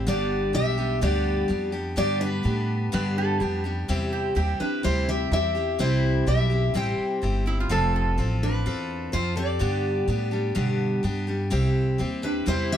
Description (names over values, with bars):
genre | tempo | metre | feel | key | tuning
honky-tonk and classic country | 126 BPM | 4/4 | straight | G mixolydian | A4 = 440 Hz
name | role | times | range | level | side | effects
picked steel-string acoustic guitar | accompaniment | 0.0-12.8 s | G2 to A4 | -27 LUFS | left 2 dB | none
upright bass | bass | 0.0-12.8 s | F1 to B2 | -26 LUFS | right 1 dB | none
picked steel-string acoustic guitar | melody | 0.1-12.8 s | D4 to G5 | -27 LUFS | left 1 dB | none
lap resonator guitar | second line | 2.9-4.6, 7.5-8.3 s | E4 to B4 | -30 LUFS | right 6 dB | none
room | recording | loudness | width
little or no reverb | close, detailed microphones | -22 LUFS | side -10 dB against mid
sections
0.0-11.5 A section; 11.5-12.8 A section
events
none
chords
0.1 G; 3.9 C; 7.7 F; 9.6 G; 11.5 C